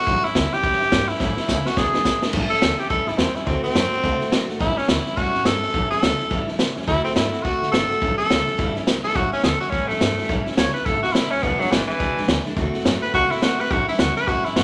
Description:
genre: rockabilly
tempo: 211 BPM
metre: 4/4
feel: swing 60% on 8ths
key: A mixolydian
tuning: A4 = 439 Hz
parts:
  - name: raspy tenor saxophone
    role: melody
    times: 0.0-14.6 s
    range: E3 to C#5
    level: -24 LUFS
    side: equal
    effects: none
  - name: picked steel-string acoustic guitar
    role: accompaniment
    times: 0.0-14.6 s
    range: E2 to F#4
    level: -31 LUFS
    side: equal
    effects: none
  - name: upright bass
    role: bass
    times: 0.0-14.6 s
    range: E1 to D3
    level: -31 LUFS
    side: equal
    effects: none
  - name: vintage drum kit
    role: drums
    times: 0.0-14.6 s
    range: crash cymbal, hi-hat, kick drum, snare drum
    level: -25 LUFS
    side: equal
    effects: none
room: moderate large studio reverb, RT60 1.1 s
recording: none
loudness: -21 LUFS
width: mono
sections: 0.0-2.3 A section; 2.3-14.6 B section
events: drum fill 1.2-2.3; tenor saxophone solo 2.3-14.6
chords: 0.1 A7; 1.8 E7; 2.3 A7; 3.5 D7; 4.6 A7; 6.9 D7; 8.0 A7; 11.4 E7; 12.6 D7; 13.7 A7

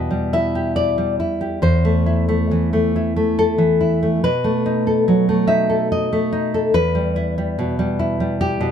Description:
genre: romantic piece for solo classical guitar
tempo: 68-75 BPM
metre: 3/4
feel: rubato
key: E minor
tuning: A4 = 441 Hz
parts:
  - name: nylon-string guitar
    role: solo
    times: 0.0-8.7 s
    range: E2 to E5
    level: -16 LUFS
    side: equal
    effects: none
room: light reverb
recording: close, detailed microphones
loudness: -16 LUFS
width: side -8 dB against mid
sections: 0.0-8.7 A section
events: none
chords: 0.0 Em; 1.6 Am/E; 4.2 B7; 6.7 Em

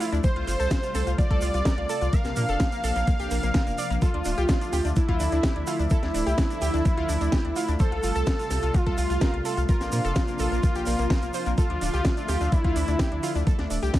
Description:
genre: progressive house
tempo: 127 BPM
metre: 4/4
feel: straight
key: D minor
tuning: A4 = 441 Hz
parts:
  - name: wide unison lead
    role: melody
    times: 0.0-13.4 s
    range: E4 to F5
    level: -29 LUFS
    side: equal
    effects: sidechain pumping
  - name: soft supersaw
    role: second line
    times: 0.0-13.4 s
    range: E4 to F5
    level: -38 LUFS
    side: equal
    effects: none
  - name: warm analog pad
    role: sustained chords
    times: 0.0-14.0 s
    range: C3 to E5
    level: -34 LUFS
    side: left 1 dB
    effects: chorus, sidechain pumping
  - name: analog pluck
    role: arpeggios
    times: 0.0-14.0 s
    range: Bb3 to D5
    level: -33 LUFS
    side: right 1 dB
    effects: chorus, sidechain pumping, dub echo
  - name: house drum kit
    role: drums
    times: 0.0-14.0 s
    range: hi-hat, snare drum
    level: -32 LUFS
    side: equal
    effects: small room ambience
  - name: egg shaker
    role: percussion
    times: 0.0-14.0 s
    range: none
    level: -41 LUFS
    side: right 2 dB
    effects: none
  - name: saturated sub bass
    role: bass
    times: 0.1-13.9 s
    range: D1 to Bb2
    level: -27 LUFS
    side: equal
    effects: sidechain pumping
  - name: electronic kick drum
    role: drums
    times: 0.2-14.0 s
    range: none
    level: -23 LUFS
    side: equal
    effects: overdrive, small room ambience
room: little or no reverb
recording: none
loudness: -22 LUFS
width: side -14 dB against mid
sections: 0.0-14.0 A section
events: none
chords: 0.2 Fadd9; 2.1 Bbadd9; 4.0 Dmadd9; 7.8 Fadd9; 9.7 Bbadd9; 11.6 Dmadd9

